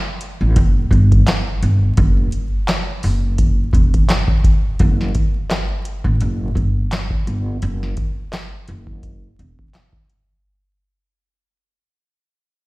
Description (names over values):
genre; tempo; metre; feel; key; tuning
hip hop, boom-bap hip-hop; 85 BPM; 4/4; swing 56% on 16ths; unclear; A4 = 440 Hz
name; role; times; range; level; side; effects
booming analog drum machine; drums; 0.2-10.3 s; handclaps, hi-hat, kick drum, snare drum; -17 LUFS; equal; none
upright bass; bass; 0.4-9.7 s; E1 to A1; -17 LUFS; equal; none
room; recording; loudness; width
little or no reverb; played on a big sound system in a bare room, large studio reverb, vinyl crackle; -15 LUFS; side -21 dB against mid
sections
0.0-4.8 A section; 4.8-10.4 B section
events
fade-out 4.8-10.4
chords
none